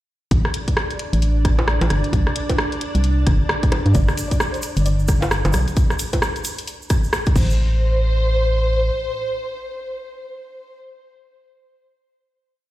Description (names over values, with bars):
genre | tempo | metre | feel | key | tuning
UK garage, two-step garage | 132 BPM | 4/4 | swing 61% on 16ths | A minor | A4 = 440 Hz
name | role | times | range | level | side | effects
soft string machine | sustained chords | 0.5-5.8 s | D4 to D5 | -30 LUFS | right 2 dB | ensemble chorus, sidechain pumping
organ-like FM bass | bass | 0.3-8.9 s | G1 to G2 | -18 LUFS | equal | tube saturation
electronic kick drum | drums | 0.3-7.5 s | none | -19 LUFS | equal | none
house drum kit | drums | 0.3-7.5 s | bongos, crash cymbal, hi-hat, rim click | -24 LUFS | equal | none
dark studio violin section | melody | 3.9-10.8 s | C5 to F5 | -26 LUFS | equal | tape echo
egg shaker | percussion | 3.9-7.6 s | none | -34 LUFS | right 4 dB | none
room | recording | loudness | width
little or no reverb | played on a big sound system in a bare room, large studio reverb | -17 LUFS | side -15 dB against mid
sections
0.3-7.6 drop; 7.6-11.2 final hit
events
drop 0.3-7.6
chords
0.3 Asus4; 2.1 Csus2; 3.7 G5; 5.5 N.C.; 7.4 Am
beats
| 0.31 0.77 1.22 1.68 | 2.13 2.58 3.04 3.49 | 3.95 4.40 4.86 5.31 | 5.77 6.22 6.67 7.13 | 7.58 8.04 8.49 8.95 | 9.40 9.86 10.31 10.77